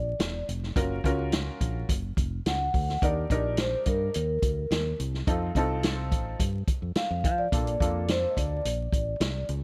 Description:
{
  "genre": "uptempo 1960s-style soul",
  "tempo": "106 BPM",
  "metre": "4/4",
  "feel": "straight",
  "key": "Bb major",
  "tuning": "A4 = 440 Hz",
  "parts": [
    { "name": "vibraphone with soft mallets", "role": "melody", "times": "0.0-9.5 s", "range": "Bb4 to Gb5", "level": "-32 LUFS", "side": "equal", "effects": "none" },
    { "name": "fingered electric bass", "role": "bass", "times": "0.0-9.6 s", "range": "E1 to F3", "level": "-33 LUFS", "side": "equal", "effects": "none" },
    { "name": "vintage drum kit", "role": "drums", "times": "0.2-9.6 s", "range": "hi-hat, kick drum, snare drum", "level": "-31 LUFS", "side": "equal", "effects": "none" },
    { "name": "clear upright piano", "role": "accompaniment", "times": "0.8-8.6 s", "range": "Bb3 to Bb4", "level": "-34 LUFS", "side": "equal", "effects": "none" }
  ],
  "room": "studio ambience",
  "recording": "vinyl crackle",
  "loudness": "-28 LUFS",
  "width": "mono",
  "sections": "0.0-9.6 A section",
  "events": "none",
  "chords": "0.0 Bb; 0.8 Gbmaj7; 3.0 Ebmaj7; 5.3 F7; 7.5 Bbmaj7",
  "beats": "0.19 | 0.76 1.32 1.89 2.45 | 3.02 3.58 4.14 4.71 | 5.27 5.83 6.40 6.96 | 7.52 8.08 8.65 9.21"
}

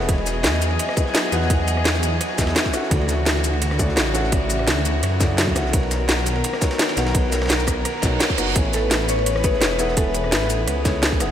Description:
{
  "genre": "liquid drum and bass",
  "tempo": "170 BPM",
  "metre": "4/4",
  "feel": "swing 53% on 16ths",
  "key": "unclear",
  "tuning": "A4 = 440 Hz",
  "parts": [
    { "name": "felt-muted upright piano", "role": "accompaniment", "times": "0.0-11.3 s", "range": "C#3 to G#5", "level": "-26 LUFS", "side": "left 1 dB", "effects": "tape echo" },
    { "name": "rich studio string section", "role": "sustained chords", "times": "0.0-11.3 s", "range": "D#3 to D#5", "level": "-28 LUFS", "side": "left 2 dB", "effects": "sidechain pumping" },
    { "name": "dark detuned saw bass", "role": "bass", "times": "0.0-11.3 s", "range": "E1 to F#2", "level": "-23 LUFS", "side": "equal", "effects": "none" },
    { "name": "crunchy breakbeat drum kit", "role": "drums", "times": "0.0-11.3 s", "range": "ride cymbal, snare drum", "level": "-32 LUFS", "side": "right 1 dB", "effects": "high-pass filter on cymbals, high-pass filter on snare, high-pass filter on room" },
    { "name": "electronic kick drum", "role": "drums", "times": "0.1-11.2 s", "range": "none", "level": "-23 LUFS", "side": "equal", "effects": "none" },
    { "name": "garage drum kit", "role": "drums", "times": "0.1-11.3 s", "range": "hi-hat, rim click, shaker, snare drum", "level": "-23 LUFS", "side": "equal", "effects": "none" },
    { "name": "reverse cymbal", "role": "sound effects", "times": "8.0-8.6 s", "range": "none", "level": "-31 LUFS", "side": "right 5 dB", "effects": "none" },
    { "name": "clean electric guitar", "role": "melody", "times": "8.7-11.0 s", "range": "A4 to C#5", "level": "-26 LUFS", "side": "left 1 dB", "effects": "ensemble chorus, tape echo" }
  ],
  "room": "moderate huge ambient reverb, RT60 4.6 s",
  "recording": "dreamy mix soaked in reverb",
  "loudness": "-18 LUFS",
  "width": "side -10 dB against mid",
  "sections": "0.0-11.3 A section",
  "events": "reverse cymbal 8.0-8.6",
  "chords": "0.1 Emaj9; 2.7 Dmaj9; 5.7 Bmaj9; 8.6 Amaj9",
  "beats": "| 0.09 0.44 0.79 1.15 | 1.50 1.85 2.21 2.56 | 2.91 3.26 3.62 3.97 | 4.32 4.68 5.03 5.38 | 5.74 6.09 6.44 6.79 | 7.15 7.50 7.85 8.21 | 8.56 8.91 9.26 9.62 | 9.97 10.32 10.68 11.03"
}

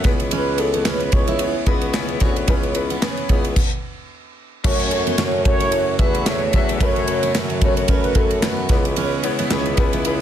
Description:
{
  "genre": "piano-driven pop",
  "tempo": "111 BPM",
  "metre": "4/4",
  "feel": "swing 56% on 16ths",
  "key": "unclear",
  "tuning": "A4 = 440 Hz",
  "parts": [
    { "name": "clear upright piano", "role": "accompaniment", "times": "0.0-10.2 s", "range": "C#3 to E5", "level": "-26 LUFS", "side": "left 8 dB", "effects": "none" },
    { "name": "picked steel-string acoustic guitar", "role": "riff", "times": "0.0-10.0 s", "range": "B3 to F#4", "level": "-28 LUFS", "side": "right 6 dB", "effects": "none" },
    { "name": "dark bassoon", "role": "bass", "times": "0.0-10.2 s", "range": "C#2 to F#2", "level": "-24 LUFS", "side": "equal", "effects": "none" },
    { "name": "modern studio drum kit", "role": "drums", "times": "0.0-10.2 s", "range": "crash cymbal, handclaps, kick drum, ride cymbal, snare drum", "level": "-20 LUFS", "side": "equal", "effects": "none" },
    { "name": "mellow horn-like synth lead", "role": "melody", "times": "0.3-8.8 s", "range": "A4 to C#5", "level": "-23 LUFS", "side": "right 1 dB", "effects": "chorus" },
    { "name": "chorused pulse-width pad", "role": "sustained chords", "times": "4.7-10.2 s", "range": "C#3 to F#4", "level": "-29 LUFS", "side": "right 2 dB", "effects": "none" }
  ],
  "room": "little or no reverb",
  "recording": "dense, heavily limited modern master",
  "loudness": "-17 LUFS",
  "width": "side -10 dB against mid",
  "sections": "0.0-4.6 A section; 4.6-10.2 B section",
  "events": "stop 3.6-4.6",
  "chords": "0.0 C#m7; 4.6 F#m; 8.7 C#m7",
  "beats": "| 0.32 0.86 1.40 1.94 | 2.48 3.02 3.56 4.10 | 4.64 5.18 5.72 6.26 | 6.80 7.34 7.88 8.43 | 8.96 9.51 10.04"
}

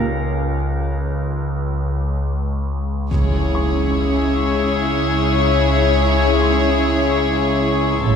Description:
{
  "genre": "cinematic, suspense film score",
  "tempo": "free time",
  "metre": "none",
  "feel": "none",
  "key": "C# harmonic minor",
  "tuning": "A4 = 439 Hz",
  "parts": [
    { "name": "drifting glass-harmonics texture", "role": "sustained chords", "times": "0.0-8.2 s", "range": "C#4 to E#5", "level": "-24 LUFS", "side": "left 2 dB", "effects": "chorus, built-in reverb" },
    { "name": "rich symphonic cello section", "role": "bass", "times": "0.0-8.2 s", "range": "A2 to C#3", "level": "-23 LUFS", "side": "right 2 dB", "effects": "none" },
    { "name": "overtone-sweeping drone", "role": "drone", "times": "0.0-8.2 s", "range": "C#2", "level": "-20 LUFS", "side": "left 1 dB", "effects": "chorus, built-in reverb" },
    { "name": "dark concert grand piano", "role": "texture", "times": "0.0-8.2 s", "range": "G4 to C#6", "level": "-37 LUFS", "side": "left 3 dB", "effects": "none" },
    { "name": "clear studio violin section", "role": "second line", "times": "3.1-8.2 s", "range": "G#4 to C#5", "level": "-21 LUFS", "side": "left 5 dB", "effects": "none" },
    { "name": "dark symphonic viola section", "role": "accompaniment", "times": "3.1-8.2 s", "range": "C#4 to E4", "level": "-23 LUFS", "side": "right 3 dB", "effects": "none" },
    { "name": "warm symphonic double bass section", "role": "bass", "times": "3.1-3.9, 8.0-8.2 s", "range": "A1 to C#2", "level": "-22 LUFS", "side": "right 4 dB", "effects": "none" },
    { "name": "impact", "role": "sound effects", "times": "3.1-5.6 s", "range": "none", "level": "-26 LUFS", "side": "left 1 dB", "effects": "none" }
  ],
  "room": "moderate scoring stage reverb, RT60 1.9 s",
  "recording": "none",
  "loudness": "-16 LUFS",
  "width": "side -7 dB against mid",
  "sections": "0.0-3.1 A section; 3.1-8.2 A section",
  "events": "impact 3.1-5.6",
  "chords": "0.0 A#m; 3.1 C#m",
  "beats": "free time"
}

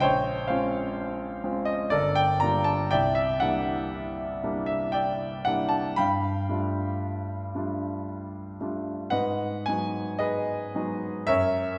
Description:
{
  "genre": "classical, impressionist solo piano",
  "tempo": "55-64 BPM",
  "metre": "3/4",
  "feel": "rubato",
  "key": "unclear",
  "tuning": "A4 = 438 Hz",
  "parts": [
    { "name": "warm grand piano", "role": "solo", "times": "0.0-11.8 s", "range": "G1 to B5", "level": "-27 LUFS", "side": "equal", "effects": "none" }
  ],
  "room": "wet scoring stage reverb, RT60 1.6 s",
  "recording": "heard from further back in the room",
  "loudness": "-27 LUFS",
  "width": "mono",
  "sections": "0.0-11.8 A section",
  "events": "none",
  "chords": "0.0 A#m9; 1.9 Gm9; 2.9 C9; 6.0 G9; 9.1 G#m7; 11.3 F#7",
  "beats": "| 0.01 0.95 1.91 | 2.92 3.92 4.96 | 5.99 7.04 8.08 | 9.14 10.21 11.28"
}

